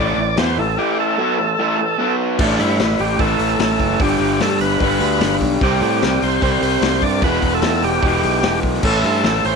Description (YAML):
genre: classic rock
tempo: 149 BPM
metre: 4/4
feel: straight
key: A dorian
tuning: A4 = 440 Hz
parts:
  - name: overdriven tonewheel organ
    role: melody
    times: 0.0-9.6 s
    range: D4 to D5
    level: -20 LUFS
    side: right 1 dB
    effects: slow rotary speaker
  - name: raw garage guitar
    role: riff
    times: 0.0-9.6 s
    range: E2 to E4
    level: -19 LUFS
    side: equal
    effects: overdrive
  - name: modern bright fingered electric bass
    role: bass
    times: 0.0-9.6 s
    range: E1 to A2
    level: -22 LUFS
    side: right 1 dB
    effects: none
  - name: vintage drum kit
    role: drums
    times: 0.4-9.5 s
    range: crash cymbal, hi-hat, kick drum, snare drum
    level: -22 LUFS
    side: left 2 dB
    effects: none
room: light reverb, studio ambience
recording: 1960s-style stereo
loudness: -15 LUFS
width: side -5 dB against mid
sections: 0.0-2.4 A section; 2.4-9.6 B section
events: tonewheel organ solo 0.0-2.4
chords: 0.0 A5; 2.0 B5; 2.4 A5; 4.0 G; 5.6 C5; 7.2 Em; 8.8 Am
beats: 0.37 | 0.78 1.18 1.58 1.99 | 2.39 2.79 3.20 3.60 | 4.00 4.41 4.81 5.21 | 5.61 6.02 6.42 6.82 | 7.22 7.62 8.03 8.43 | 8.83 9.23